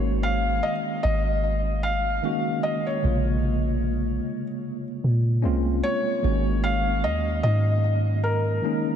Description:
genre	contemporary R&B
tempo	75 BPM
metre	4/4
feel	swing 58% on 16ths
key	unclear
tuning	A4 = 440 Hz
part	felt-muted upright piano	melody	0.0-9.0 s	Bb4 to F5	-27 LUFS	left 1 dB	ping-pong delay
part	tine electric piano	accompaniment	0.0-9.0 s	C3 to Gb4	-27 LUFS	equal	overdrive, fast stereo tremolo
part	soft 808-style bass	bass	0.0-8.6 s	Ab1 to Bb2	-24 LUFS	equal	none
room	moderate huge ambient reverb, RT60 4.3 s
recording	dreamy mix soaked in reverb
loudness	-22 LUFS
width	side -8 dB against mid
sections	0.0-9.0 A section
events	none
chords	0.0 Ab9sus4; 3.0 Bbm7; 6.2 Ab9sus4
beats	0.64 1.44 2.24 | 3.04 3.84 4.64 5.44 | 6.24 7.04 7.84 8.64

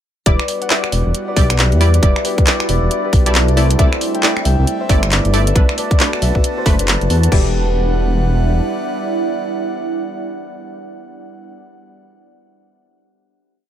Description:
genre	UK garage, two-step garage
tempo	136 BPM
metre	4/4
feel	swing 61% on 16ths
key	E minor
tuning	A4 = 440 Hz
part	concert harp	melody	0.3-11.5 s	C4 to G5	-23 LUFS	left 6 dB	digital delay
part	airy breathy pad	sustained chords	0.3-11.5 s	G3 to F#5	-27 LUFS	equal	chorus, sidechain pumping
part	punchy chord stab	stabs	0.3-11.5 s	G3 to D5	-22 LUFS	right 1 dB	chorus, vintage 12-bit sampler grit
part	dark detuned saw bass	bass	0.3-8.6 s	E1 to E2	-15 LUFS	equal	none
part	electronic kick drum	drums	0.3-7.4 s	none	-14 LUFS	equal	none
part	garage drum kit	drums	0.3-7.4 s	crash cymbal, finger snaps, handclaps, hi-hat	-19 LUFS	equal	none
part	deep dark ambient pad	texture	1.2-11.6 s	D4 to A5	-24 LUFS	right 4 dB	chorus, built-in reverb, sidechain pumping
room	digital ambience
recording	none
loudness	-13 LUFS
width	side -10 dB against mid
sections	0.3-7.3 drop; 7.3-10.8 final chord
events	drop 0.3-7.3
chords	0.3 Em7; 3.6 C69; 5.6 Bm7; 7.3 Em7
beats	| 0.26 0.70 1.14 1.58 | 2.02 2.47 2.91 3.35 | 3.79 4.23 4.67 5.11 | 5.55 6.00 6.44 6.88 | 7.32 7.76 8.20 8.64 | 9.08 9.53 9.97 10.41

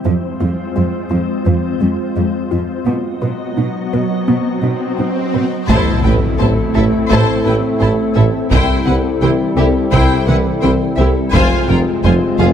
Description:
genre	cinematic, hybrid orchestral and electronic film score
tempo	85 BPM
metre	4/4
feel	straight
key	unclear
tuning	A4 = 439 Hz
part	glassy FM pad	sustained chords	0.0-12.5 s	F#3 to D#5	-20 LUFS	left 2 dB	ensemble chorus, built-in reverb
part	resonant blip pluck	arpeggios	0.1-12.5 s	C3 to B4	-23 LUFS	left 1 dB	phaser, ping-pong delay
part	rich symphonic cello section	bass	0.1-12.5 s	F2 to C3	-19 LUFS	right 2 dB	none
part	swell and impact	sound effects	4.0-8.5 s	none	-21 LUFS	equal	none
part	rich symphonic violin section	melody	5.7-12.5 s	E5 to A5	-24 LUFS	left 5 dB	none
part	clear symphonic violin section	second line	5.7-12.5 s	G4 to C5	-24 LUFS	left 2 dB	none
part	rich symphonic viola section	accompaniment	5.7-12.5 s	E4 to F4	-24 LUFS	right 1 dB	none
part	bright trombone section	sustained chords	5.7-12.5 s	A2 to A3	-22 LUFS	right 2 dB	none
part	mellow French horn section	sustained chords	5.7-12.5 s	C4 to F4	-22 LUFS	left 4 dB	none
part	clear symphonic double bass section	bass	5.7-12.5 s	F1 to C2	-18 LUFS	right 2 dB	none
part	clear tuba	bass	5.7-12.5 s	F1 to C2	-21 LUFS	right 3 dB	none
part	taiko ensemble	drums	5.7-12.0 s	none	-20 LUFS	left 2 dB	none
room	moderate scoring stage reverb, RT60 1.6 s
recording	close, detailed microphones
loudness	-13 LUFS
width	side -9 dB against mid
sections	0.0-5.7 A section; 5.7-12.5 A section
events	swell 4.0-5.7; impact 5.7-8.5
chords	0.0 Fm; 2.9 B; 5.7 Am; 8.5 C; 11.3 Fm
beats	| 0.05 0.75 1.46 2.17 | 2.87 3.58 4.28 4.99 | 5.70 6.40 7.11 7.81 | 8.52 9.22 9.93 10.64 | 11.34 12.05

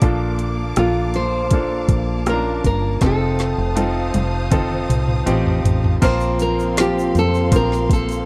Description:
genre	pop ballad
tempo	80 BPM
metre	4/4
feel	straight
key	Bb major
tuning	A4 = 439 Hz
part	clear concert grand piano	accompaniment	0.0-8.3 s	Bb2 to C5	-25 LUFS	equal	none
part	warm studio string section	sustained chords	0.0-8.3 s	Bb3 to Eb6	-32 LUFS	equal	none
part	fingered electric bass	bass	0.0-8.3 s	F1 to F2	-24 LUFS	equal	none
part	smooth R&B drum kit	drums	0.0-8.3 s	crash cymbal, hi-hat, kick drum, rim click, snare drum, toms	-21 LUFS	equal	none
part	nylon-string guitar	melody	0.8-8.3 s	F4 to C5	-24 LUFS	equal	none
part	warm French horn section	second line	6.0-8.3 s	F3 to C4	-28 LUFS	equal	none
part	tube shaker	percussion	6.0-8.3 s	none	-44 LUFS	equal	none
room	small room ambience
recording	dry, close 1970s-style studio recording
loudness	-19 LUFS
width	mono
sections	0.0-6.0 A section; 6.0-8.3 B section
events	drum fill 3.0-6.0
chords	0.0 Bbmaj7; 3.0 F7; 6.0 Bbsus2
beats	| 0.02 0.77 1.52 2.27 | 3.02 3.77 4.52 5.27 | 6.02 6.77 7.52

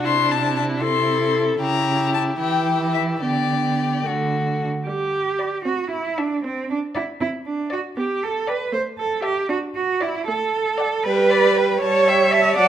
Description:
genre	quick classical-period movement for string quartet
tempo	77 BPM (dotted quarters)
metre	6/8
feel	rubato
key	G major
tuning	A4 = 440 Hz
part	rich violin	second line	0.0-12.7 s	E4 to F#5	-24 LUFS	left 4 dB	none
part	rich viola	accompaniment	0.0-12.7 s	F#3 to E4	-24 LUFS	right 2 dB	none
part	warm cello	bass	0.0-12.7 s	C3 to E5	-21 LUFS	right 4 dB	none
part	rich violin	melody	0.1-12.7 s	D5 to C6	-25 LUFS	left 9 dB	none
room	moderate recital hall reverb, RT60 1.4 s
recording	close, detailed microphones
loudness	-19 LUFS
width	side -10 dB against mid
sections	0.0-4.9 A section; 4.9-12.7 B section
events	none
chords	0.0 Am/C; 1.6 C#dim7; 3.2 G/D; 4.0 D; 4.9 G; 5.7 Am/C; 8.0 G/B; 8.7 A5; 9.5 D; 11.0 G; 11.8 A7/G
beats	| 0.05 0.82 | 1.60 2.40 | 3.21 4.05 | 4.87 5.65 | 6.44 7.21 | 7.97 8.73 | 9.49 10.29 | 11.05 11.81 | 12.57

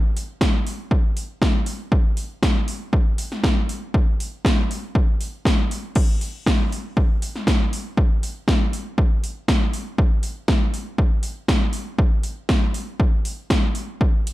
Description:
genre	rock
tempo	119 BPM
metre	4/4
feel	straight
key	none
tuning	none
part	80s electronic pad drums	drums	0.2-14.3 s	crash cymbal, hi-hat, kick drum, snare drum	-19 LUFS	equal	overdrive
room	little or no reverb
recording	dark, warm production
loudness	-19 LUFS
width	side -17 dB against mid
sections	0.0-14.0 A section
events	none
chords	none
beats	0.41 0.92 1.42 | 1.92 2.43 2.93 3.43 | 3.94 4.44 4.95 5.45 | 5.95 6.46 6.96 7.47 | 7.97 8.47 8.98 9.48 | 9.98 10.49 10.99 11.49 | 12.00 12.50 13.00 13.51 | 14.01

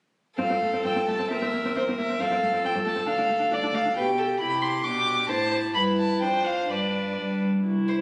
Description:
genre	quick classical-period movement for string quartet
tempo	121-138 BPM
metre	2/4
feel	rubato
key	F major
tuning	A4 = 440 Hz
part	warm violin	melody	0.4-8.0 s	C5 to D6	-28 LUFS	equal	none
part	rich violin	second line	0.4-8.0 s	G4 to C5	-32 LUFS	equal	none
part	warm viola	accompaniment	0.4-8.0 s	A3 to G4	-33 LUFS	equal	none
part	rich cello	bass	0.4-8.0 s	C2 to G3	-33 LUFS	equal	none
room	wet scoring stage reverb, RT60 1.6 s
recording	recorded on a phone in the room, studio ambience, compression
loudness	-25 LUFS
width	mono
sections	0.4-7.7 A section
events	none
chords	0.4 F; 1.3 C7/E; 2.2 F; 3.1 Dm; 4.0 G/B; 4.4 C; 4.8 G/B; 5.3 Am; 5.7 Em/G; 6.2 Dm7/F; 6.7 G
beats	| 0.39 0.85 | 1.31 1.76 | 2.21 2.64 | 3.08 3.52 | 3.96 4.40 | 4.84 5.29 | 5.75 6.21 | 6.70 7.18 | 7.65

